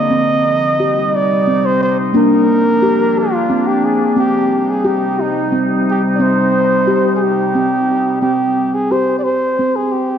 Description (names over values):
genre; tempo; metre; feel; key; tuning
world meditative; 59 BPM (dotted quarters); 6/8; straight; C minor; A4 = 437 Hz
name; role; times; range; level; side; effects
mellow flugelhorn; melody; 0.0-10.2 s; Eb4 to Eb5; -17 LUFS; right 1 dB; tape echo
evolving wavetable pad; sustained chords; 0.0-8.2 s; C3 to Eb4; -18 LUFS; left 1 dB; chorus, built-in reverb
steel tongue drum; arpeggios; 0.0-10.2 s; Bb3 to G4; -16 LUFS; equal; tape echo
room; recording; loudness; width
wet echo chamber reverb, RT60 2.5 s; dark, warm production; -12 LUFS; side -8 dB against mid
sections
0.0-8.2 A section; 8.2-10.2 B section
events
none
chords
0.1 Cm; 2.1 Bb; 4.2 Cm; 8.2 C5